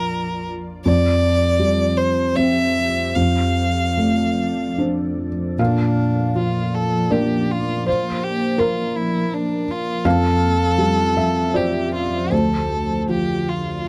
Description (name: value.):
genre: neoclassical piano and strings.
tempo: 73-84 BPM.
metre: 3/4.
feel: rubato.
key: unclear.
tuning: A4 = 442 Hz.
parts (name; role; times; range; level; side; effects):
clear violin; melody; 0.0-13.9 s; D4 to F5; -25 LUFS; equal; none.
felt-muted upright piano; accompaniment; 0.0-13.9 s; D2 to F5; -22 LUFS; equal; none.
ethereal airy pad; sustained chords; 0.0-13.9 s; F3 to D5; -30 LUFS; equal; ensemble chorus, built-in reverb, phaser.
room: moderate booth ambience, RT60 0.2 s.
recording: dry, close 1970s-style studio recording.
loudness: -20 LUFS.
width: mono.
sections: 0.0-5.6 A section; 5.6-13.9 A section.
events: none.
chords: 0.0 Bb; 0.9 Fsus2; 3.2 F6; 5.6 Bb; 10.1 Fsus2; 12.3 Dm7.